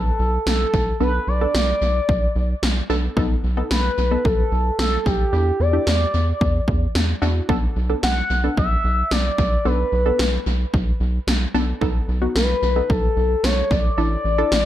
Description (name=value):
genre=synth-pop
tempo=111 BPM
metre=4/4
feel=straight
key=B minor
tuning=A4 = 440 Hz
part: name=expressive portamento lead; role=melody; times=0.0-14.7 s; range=G4 to F#5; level=-22 LUFS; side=left 1 dB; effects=chorus, tape echo
part: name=analog pluck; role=accompaniment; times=0.0-14.7 s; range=B3 to A4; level=-25 LUFS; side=equal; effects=chorus
part: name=rubbery square bass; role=bass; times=0.0-14.7 s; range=A1 to E2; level=-21 LUFS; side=equal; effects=none
part: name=80s electronic pad drums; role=drums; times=0.5-14.6 s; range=kick drum, snare drum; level=-22 LUFS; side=equal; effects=tape echo
room=light reverb, digital ambience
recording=echo-heavy mix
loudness=-18 LUFS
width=side -12 dB against mid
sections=0.0-14.7 A section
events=none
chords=0.0 Bm7; 3.2 B7; 5.3 Em7; 7.5 Bm7; 11.8 B7; 14.0 Asus4